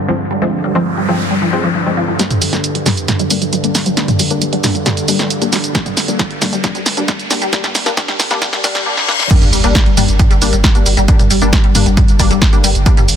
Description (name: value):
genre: driving peak-time techno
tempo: 135 BPM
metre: 4/4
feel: straight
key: G phrygian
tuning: A4 = 440 Hz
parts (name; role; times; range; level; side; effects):
- resonant blip pluck; riff; 0.0-13.0 s; F3 to G3; -20 LUFS; left 1 dB; phaser, lush chorus, sidechain pumping, tape echo
- deep dark ambient pad; drone; 0.0-13.2 s; G2 to D3; -23 LUFS; right 1 dB; chorus, built-in reverb, sidechain pumping
- filtered dub chord stab; stabs; 0.1-13.0 s; F3 to D4; -20 LUFS; left 4 dB; analog chorus, sidechain pumping, dub echo
- noise sweep, riser, reverse cymbal and sub drop; sound effects; 0.7-11.1 s; none; -24 LUFS; left 2 dB; none
- punchy analog drum machine; drums; 2.2-13.2 s; crash cymbal, hi-hat, shaker, snare drum, toms; -16 LUFS; right 2 dB; none
- electronic kick drum; drums; 5.7-12.9 s; none; -12 LUFS; equal; none
- saturated sub bass; bass; 9.4-13.2 s; G1; -17 LUFS; equal; sidechain pumping, low-pass filter
room: light reverb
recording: dense, heavily limited modern master, high-pass filter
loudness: -11 LUFS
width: side -9 dB against mid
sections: 0.0-2.2 A section; 2.2-9.3 B section; 9.3-13.2 C section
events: filter sweep on synth arpeggio sound 0.0-2.2, 2.2-9.3; noise sweep 0.7-2.2; build-up 2.2-9.3; drum fill 2.2-8.9, 9.0-9.3; riser 2.2-8.9; filter sweep on synth stab 2.2-9.3; filter sweep 2.2-9.3; reverse cymbal 8.4-9.3; drop 9.3-13.2; impact 9.3-11.1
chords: 0.0 Fm; 2.2 Gm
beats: | 0.42 0.86 1.31 1.75 | 2.19 2.64 3.08 3.53 | 3.97 4.42 4.86 5.31 | 5.75 6.20 6.64 7.08 | 7.53 7.97 8.42 8.86 | 9.31 9.75 10.20 10.64 | 11.08 11.53 11.97 12.42 | 12.86